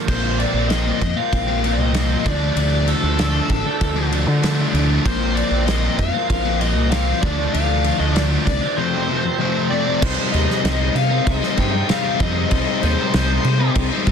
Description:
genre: indie rock.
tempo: 96 BPM.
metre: 4/4.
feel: straight.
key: C dorian.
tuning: A4 = 437 Hz.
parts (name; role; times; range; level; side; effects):
biting overdriven guitar; riff; 0.0-14.1 s; F2 to Eb4; -25 LUFS; right 10 dB; analog chorus.
nasal lead guitar with a parked wah; melody; 0.1-13.7 s; A4 to G5; -24 LUFS; left 3 dB; overdrive.
sludgy distorted guitar; riff; 0.1-14.1 s; F2 to Eb4; -23 LUFS; left 10 dB; overdrive.
fingered electric bass; bass; 0.1-14.1 s; A1 to D3; -21 LUFS; right 1 dB; none.
loose indie drum kit; drums; 0.1-14.1 s; crash cymbal, kick drum, ride cymbal, snare drum; -23 LUFS; equal; none.
room: small room ambience.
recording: dense, heavily limited modern master.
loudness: -16 LUFS.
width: side -7 dB against mid.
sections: 0.1-10.0 A section; 10.0-14.1 B section.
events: none.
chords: 0.1 Bbsus2; 2.3 Dm; 5.1 Bbsus2; 7.2 Dm; 8.8 F; 10.0 Cm.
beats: | 0.08 0.71 1.33 1.95 | 2.57 3.19 3.81 4.43 | 5.06 5.68 6.30 6.92 | 7.54 8.16 8.79 9.41 | 10.03 10.65 11.27 11.89 | 12.52 13.14 13.76.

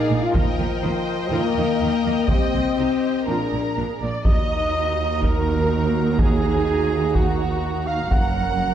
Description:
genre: cinematic, epic orchestral film score.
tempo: 124 BPM.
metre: 4/4.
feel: straight.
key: Eb minor from 4.3 s.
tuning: A4 = 440 Hz.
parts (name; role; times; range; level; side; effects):
warm symphonic violin section; melody; 0.0-8.7 s; G4 to Bb5; -33 LUFS; left 4 dB; none.
warm symphonic violin section; second line; 0.0-8.7 s; Gb4 to Bb5; -30 LUFS; left 1 dB; none.
warm symphonic viola section; accompaniment; 0.0-8.7 s; Bb3 to C5; -32 LUFS; right 1 dB; none.
warm French horn section; sustained chords; 0.0-8.7 s; F3 to Gb4; -25 LUFS; left 5 dB; none.
rich symphonic cello section; bass; 0.1-8.7 s; Eb2 to Eb3; -28 LUFS; right 3 dB; none.
rich symphonic double bass section; bass; 0.1-8.7 s; Gb1 to Eb2; -26 LUFS; right 4 dB; none.
solo taiko drums; drums; 0.3-8.6 s; none; -22 LUFS; equal; none.
mellow trumpet; stabs; 4.0-8.7 s; Gb4 to Gb5; -24 LUFS; right 3 dB; none.
room: wet scoring stage reverb, RT60 1.6 s.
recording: dark, warm production.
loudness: -18 LUFS.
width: side -10 dB against mid.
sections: 0.0-4.3 A section; 4.3-8.7 B section.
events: none.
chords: 0.4 Ebadd9; 2.3 Cm; 3.3 Bb7; 4.3 Ebm; 8.1 Gb.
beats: | 0.35 0.83 1.32 1.81 | 2.29 2.78 3.27 3.77 | 4.26 4.74 5.23 5.71 | 6.19 6.67 7.15 7.64 | 8.12 8.60.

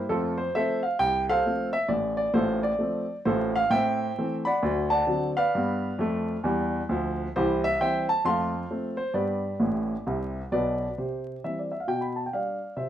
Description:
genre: jazz, stride piano.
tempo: 132 BPM.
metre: 4/4.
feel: swing 64% on 8ths.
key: F major.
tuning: A4 = 439 Hz.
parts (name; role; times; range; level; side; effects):
warm baby grand piano; solo; 0.0-12.9 s; A1 to C6; -24 LUFS; equal; none.
room: moderate studio reverb, RT60 0.5 s.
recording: band playing live in one room, vinyl crackle.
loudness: -24 LUFS.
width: side -11 dB against mid.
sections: 0.0-11.0 A section; 11.0-12.9 B section.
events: grand piano fill 9.6-11.0.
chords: 0.1 F; 1.9 F/A; 3.7 Am7; 4.6 D7; 5.5 G7; 7.3 C; 8.2 F; 9.2 G; 11.0 C; 11.9 G7/B.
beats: | 0.08 0.54 0.99 1.44 | 1.90 2.35 2.80 3.26 | 3.71 4.17 4.62 5.07 | 5.53 5.98 6.43 6.89 | 7.34 7.79 8.25 8.70 | 9.15 9.61 10.06 10.52 | 10.97 11.42 11.88 12.33 | 12.79.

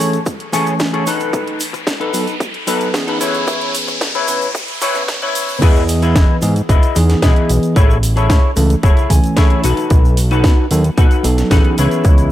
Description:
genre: nu-disco, nu disco.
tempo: 112 BPM.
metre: 4/4.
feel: straight.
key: unclear.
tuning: A4 = 440 Hz.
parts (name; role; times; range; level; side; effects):
bell-like tine electric piano; accompaniment; 0.0-12.3 s; E3 to G#5; -20 LUFS; right 1 dB; vintage 12-bit sampler grit, sidechain pumping, tape echo.
clean electric guitar; riff; 0.0-12.3 s; D#4 to D#5; -19 LUFS; left 3 dB; analog chorus, low-pass filter, tape echo.
house drum kit; drums; 0.0-12.3 s; crash cymbal, hi-hat, snare drum; -23 LUFS; right 1 dB; overdrive, high-pass filter on hats, high-pass filter on snare, high-pass filter on cymbals, high-pass filter on room.
egg shaker; percussion; 0.0-12.3 s; none; -30 LUFS; right 1 dB; none.
riser; sound effects; 0.1-5.6 s; none; -24 LUFS; equal; none.
electronic kick drum; drums; 0.3-12.2 s; none; -12 LUFS; equal; overdrive, high-pass filter on kick, high-pass filter on room.
fat analog bass; bass; 5.6-12.3 s; E1 to B2; -15 LUFS; equal; sidechain pumping.
room: little or no reverb.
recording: high-pass filter.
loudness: -12 LUFS.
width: side -13 dB against mid.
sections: 0.0-5.6 A section; 5.6-12.3 B section.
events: build-up 0.0-5.6; filter sweep 0.0-5.6; riser 0.1-5.6; drop 5.6-12.3.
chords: 0.0 Amaj7; 1.1 B7; 3.2 C#m7; 5.6 Emaj7; 7.8 Amaj7; 9.6 B7; 11.8 C#m7.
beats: 0.27 0.80 | 1.34 1.87 2.41 2.94 | 3.48 4.02 4.55 5.09 | 5.62 6.16 6.70 7.23 | 7.77 8.30 8.84 9.37 | 9.91 10.45 10.98 11.52 | 12.05.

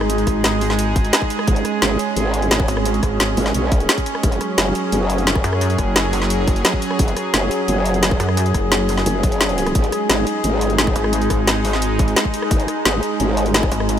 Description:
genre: dark technical drum and bass.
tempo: 174 BPM.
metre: 4/4.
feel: straight.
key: unclear.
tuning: A4 = 441 Hz.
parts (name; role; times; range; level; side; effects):
sweeping resonant pad; sustained chords; 0.0-14.0 s; F#3 to G#4; -21 LUFS; right 1 dB; chorus, sidechain pumping.
pulsing pluck wobble bass; bass; 0.0-3.4, 5.4-14.0 s; F#1 to F#2; -20 LUFS; equal; chorus.
drum and bass drum kit; drums; 0.0-14.0 s; hi-hat, rim click, snare drum; -21 LUFS; equal; overdrive.
electronic kick drum; drums; 0.3-13.7 s; none; -20 LUFS; equal; none.
growl bass; bass; 1.5-13.7 s; F#1 to B1; -20 LUFS; equal; chorus, tube saturation, sidechain pumping.
room: moderate huge ambient reverb, RT60 8.0 s.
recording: dreamy mix soaked in reverb.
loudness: -16 LUFS.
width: side -9 dB against mid.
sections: 0.0-14.0 A section.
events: kick drops out 9.4-9.8.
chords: 0.0 G#5; 4.2 F#5; 9.8 G#5.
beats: | 0.10 0.44 0.79 1.13 | 1.48 1.82 2.17 2.51 | 2.85 3.20 3.54 3.89 | 4.23 4.58 4.92 5.27 | 5.61 5.96 6.30 6.65 | 6.99 7.34 7.68 8.03 | 8.37 8.72 9.06 9.41 | 9.75 10.10 10.44 10.79 | 11.13 11.47 11.82 12.16 | 12.51 12.86 13.20 13.54 | 13.89.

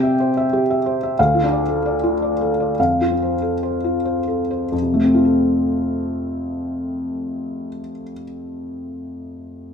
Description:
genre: neoclassical minimalist piano.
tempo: 86-124 BPM.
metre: 3/4.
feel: rubato.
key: F major.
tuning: A4 = 440 Hz.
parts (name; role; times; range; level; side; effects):
felt-muted upright piano; solo; 0.0-9.7 s; D2 to G5; -18 LUFS; left 1 dB; none.
room: moderate large studio reverb, RT60 1.1 s.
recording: band playing live in one room.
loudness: -17 LUFS.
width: side -6 dB against mid.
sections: 0.0-4.7 A section; 4.7-8.9 B section.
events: slowing down 0.4-4.7.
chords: 0.0 C; 1.2 Dm; 2.8 F.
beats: 0.19 0.68 | 1.17 1.67 2.19 | 2.77 3.40 4.04 | 4.72 5.40 6.08 | 6.78 7.48 8.17.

